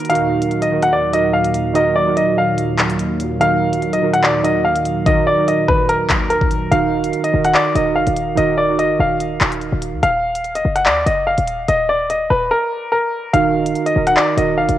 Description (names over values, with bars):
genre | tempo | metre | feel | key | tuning
hip hop, drill | 145 BPM | 4/4 | half-time | Eb harmonic minor | A4 = 440 Hz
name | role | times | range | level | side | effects
bright baby grand piano | melody | 0.0-14.8 s | Bb4 to Gb5 | -16 LUFS | left 1 dB | low-pass filter, cassette tape
warbly lo-fi synth keys | accompaniment | 0.0-10.1, 13.3-14.8 s | Eb3 to Bb4 | -20 LUFS | right 7 dB | chorus, low-pass filter, cassette tape
warm analog pad | sustained chords | 0.0-6.7 s | Eb2 to Gb3 | -24 LUFS | left 2 dB | chorus, cassette tape
drill drum kit | drums | 0.0-14.8 s | handclaps, hi-hat, kick drum | -20 LUFS | left 1 dB | cassette tape
short 808-style bass | bass | 6.7-14.8 s | Eb1 to Eb2 | -22 LUFS | left 1 dB | none
room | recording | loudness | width
light reverb | home recording on cassette | -14 LUFS | side -12 dB against mid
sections
0.1-6.7 A section; 6.7-14.8 B section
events
break 12.5-13.3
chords
0.1 Ebm